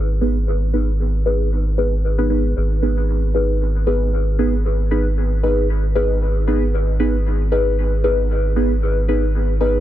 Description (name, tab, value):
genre	dub techno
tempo	115 BPM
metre	4/4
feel	swing 55% on 16ths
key	G# minor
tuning	A4 = 438 Hz
part	soft dub sub bass	bass	0.0-9.8 s	G#1	-18 LUFS	equal	none
part	deep mellow chord stab	stabs	0.2-9.8 s	B3 to B4	-20 LUFS	equal	chorus, phaser, dub echo
room	light reverb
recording	dense, heavily limited modern master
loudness	-16 LUFS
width	side -13 dB against mid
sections	0.0-9.8 A section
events	none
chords	0.0 G#m